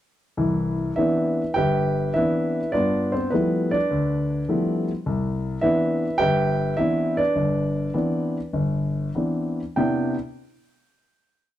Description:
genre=solo jazz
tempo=103 BPM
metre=4/4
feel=swing 69% on 8ths, rubato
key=C major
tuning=A4 = 437 Hz
part: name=warm grand piano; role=solo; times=0.4-10.1 s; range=G1 to G5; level=-21 LUFS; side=equal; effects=none
room=moderate studio reverb, RT60 0.9 s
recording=dark, warm production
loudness=-21 LUFS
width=side -13 dB against mid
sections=0.4-9.8 A section; 9.8-11.6 final chord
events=none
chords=0.4 Cmaj9; 2.8 G13; 5.1 Cmaj9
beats=| 0.37 0.97 1.56 2.16 | 2.75 3.33 3.91 4.49 | 5.06 5.63 6.20 6.78 | 7.36 7.94 8.53 9.14 | 9.76

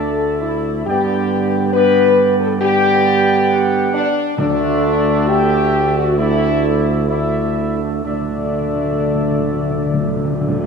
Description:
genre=classical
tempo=62-69 BPM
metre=4/4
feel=straight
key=unclear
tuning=A4 = 440 Hz
part: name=mellow trumpet section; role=melody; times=0.0-10.7 s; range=D5 to G5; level=-26 LUFS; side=right 2 dB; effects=none
part: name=mellow trombone section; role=sustained chords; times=0.0-10.7 s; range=D3 to B3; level=-22 LUFS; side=right 6 dB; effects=none
part: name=warm French horn section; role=sustained chords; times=0.0-10.7 s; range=A3 to B4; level=-17 LUFS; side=left 3 dB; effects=none
part: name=mellow tuba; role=bass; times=0.0-10.7 s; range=D2 to G2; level=-20 LUFS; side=right 3 dB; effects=none
part: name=timpani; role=percussion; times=4.4-10.7 s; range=D3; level=-22 LUFS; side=left 2 dB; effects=none
room=wet concert hall reverb, RT60 1.9 s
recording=minimal, uncompressed stereo recording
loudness=-14 LUFS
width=side -5 dB against mid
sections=0.0-10.7 A section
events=timpani fill 8.0-10.7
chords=0.0 Dsus2; 0.9 G; 4.4 Dsus2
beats=| 0.87 1.74 2.62 3.50 | 4.39 5.29 6.19 7.09 | 8.05 9.00 9.93

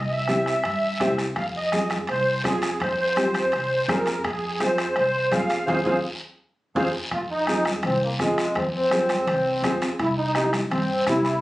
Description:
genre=latin, cumbia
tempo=167 BPM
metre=4/4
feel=straight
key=F harmonic minor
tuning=A4 = 440 Hz
part: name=musette accordion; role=melody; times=0.0-11.4 s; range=Ab3 to F5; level=-24 LUFS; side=equal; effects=none
part: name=upright bass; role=bass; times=0.0-11.4 s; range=C2 to G2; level=-31 LUFS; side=equal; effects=none
part: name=nylon-string guitar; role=accompaniment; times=0.3-11.3 s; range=C4 to Ab4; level=-26 LUFS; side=equal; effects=none
part: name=bombo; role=percussion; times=0.3-11.4 s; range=none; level=-31 LUFS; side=equal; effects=none
part: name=congas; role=percussion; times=0.3-11.3 s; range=none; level=-32 LUFS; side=equal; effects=none
part: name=guiro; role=percussion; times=0.3-11.4 s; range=none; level=-35 LUFS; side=left 1 dB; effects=none
part: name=timbales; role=percussion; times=0.3-11.4 s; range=none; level=-35 LUFS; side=right 2 dB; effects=none
room=moderate studio reverb, RT60 0.6 s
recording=recorded on a phone in the room, studio reverb, compression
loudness=-21 LUFS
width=side -17 dB against mid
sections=0.0-7.1 A section; 7.1-11.4 A section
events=drum fill 5.7-7.1; band accent 5.7-7.1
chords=0.0 C; 1.4 Fm; 10.0 C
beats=0.28 0.65 1.01 | 1.37 1.73 2.09 2.45 | 2.81 3.17 3.53 3.89 | 4.25 4.61 4.97 5.33 | 5.69 6.05 6.41 6.77 | 7.13 7.49 7.84 8.21 | 8.56 8.92 9.28 9.64 | 10.00 10.36 10.72 11.08

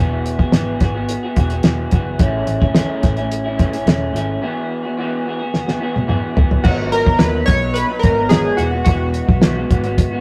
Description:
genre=indie pop, bedroom pop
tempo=108 BPM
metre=4/4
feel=straight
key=unclear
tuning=A4 = 436 Hz
part: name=electric guitar through a small old amp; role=accompaniment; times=0.0-10.2 s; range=G#2 to G#4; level=-24 LUFS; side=equal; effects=vibrato effect
part: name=vintage muted picked electric bass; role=bass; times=0.0-10.2 s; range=E1 to D#2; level=-25 LUFS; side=equal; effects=none
part: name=cloth-damped thuddy drum kit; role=drums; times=0.3-10.1 s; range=crash cymbal, hi-hat, kick drum, snare drum, toms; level=-18 LUFS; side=equal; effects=none
part: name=chorused retro synth keys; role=melody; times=6.6-10.2 s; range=F#4 to C#5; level=-21 LUFS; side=equal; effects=none
room=moderate small room reverb, RT60 0.6 s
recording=rough rehearsal-room recording, warm saturation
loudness=-17 LUFS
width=mono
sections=0.0-6.7 A section; 6.7-10.2 B section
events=drum fill 5.5-6.7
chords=0.0 Eadd9; 2.2 Amaj7; 4.4 Eadd9; 6.7 G#m7; 8.6 Eadd9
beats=0.53 1.09 1.64 | 2.20 2.76 3.31 3.87 | 4.42 4.98 5.54 6.09 | 6.65 7.21 7.76 8.32 | 8.88 9.43 9.99

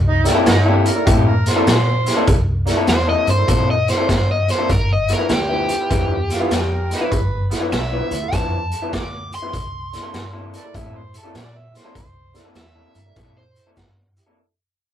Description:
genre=electric blues shuffle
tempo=99 BPM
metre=4/4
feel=swing 65% on 8ths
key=C mixolydian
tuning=A4 = 440 Hz
part: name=vintage muted fingered electric bass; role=bass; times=0.0-14.2 s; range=G1 to Bb2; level=-21 LUFS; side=equal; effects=none
part: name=overdriven harmonica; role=second line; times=0.1-2.3, 6.3-12.4 s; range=D4 to E5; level=-24 LUFS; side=right 2 dB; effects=none
part: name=clear upright piano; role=accompaniment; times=0.2-14.4 s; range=Bb3 to C5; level=-26 LUFS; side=right 3 dB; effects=none
part: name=electric guitar through a small old amp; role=riff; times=0.3-14.4 s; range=G2 to A4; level=-22 LUFS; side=left 3 dB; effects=none
part: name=raw garage drum kit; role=drums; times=0.3-14.3 s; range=hi-hat, kick drum, snare drum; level=-20 LUFS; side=equal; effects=none
part: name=overdriven electric guitar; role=melody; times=2.9-13.7 s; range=G4 to D6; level=-22 LUFS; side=left 1 dB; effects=none
room=light reverb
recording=rough rehearsal-room recording, lossy compression artefacts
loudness=-15 LUFS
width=side -10 dB against mid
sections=0.0-14.4 A section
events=fade-out 0.0-14.4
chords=0.0 C13; 4.7 G13; 9.5 C13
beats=0.46 1.07 1.67 | 2.28 2.88 3.49 4.09 | 4.70 5.30 5.91 6.51 | 7.12 7.72 8.32 8.93 | 9.53 10.14 10.74 11.35 | 11.96 12.56 13.16 13.77

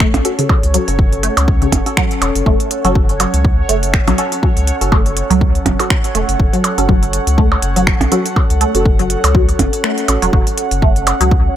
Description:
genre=minimal techno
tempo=122 BPM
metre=4/4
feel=swing 56% on 16ths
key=F# minor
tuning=A4 = 440 Hz
part: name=resonant blip pluck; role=riff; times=0.0-11.3 s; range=C#3 to A3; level=-20 LUFS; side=equal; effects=phaser, lush chorus, sidechain pumping, dub echo
part: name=round analog bass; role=bass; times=0.0-11.5 s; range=E1 to C#2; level=-17 LUFS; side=equal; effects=sidechain pumping
part: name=electronic kick drum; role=drums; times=0.0-11.4 s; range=none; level=-14 LUFS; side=equal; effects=none
part: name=techno drum kit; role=drums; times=0.0-11.3 s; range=finger snaps, hi-hat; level=-20 LUFS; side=right 1 dB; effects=none
part: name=bubbling stepped-filter texture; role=texture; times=0.0-11.6 s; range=C#5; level=-26 LUFS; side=right 3 dB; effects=chorus, built-in reverb, sidechain pumping
part: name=warbly tape-like pad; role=texture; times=0.0-11.6 s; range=C#4 to F#5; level=-22 LUFS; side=equal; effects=chorus, built-in reverb, phaser, sidechain pumping
part: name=percussion blips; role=percussion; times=0.1-11.2 s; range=none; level=-19 LUFS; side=right 3 dB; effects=overdrive, tape echo
part: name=filtered dub chord stab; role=stabs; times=0.2-10.2 s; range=C#4 to A4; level=-22 LUFS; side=right 1 dB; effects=phaser, wide subtle chorus, tape echo
room=light reverb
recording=none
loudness=-11 LUFS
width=side -11 dB against mid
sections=0.0-10.3 A section; 10.3-11.6 B section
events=kick drops out 9.8-10.3; drop 10.3-11.6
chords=0.0 F#m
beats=0.00 | 0.49 0.99 1.48 1.97 | 2.46 2.95 3.44 3.94 | 4.43 4.92 5.41 5.90 | 6.40 6.89 7.38 7.87 | 8.36 8.86 9.35 9.84 | 10.33 10.82 11.31

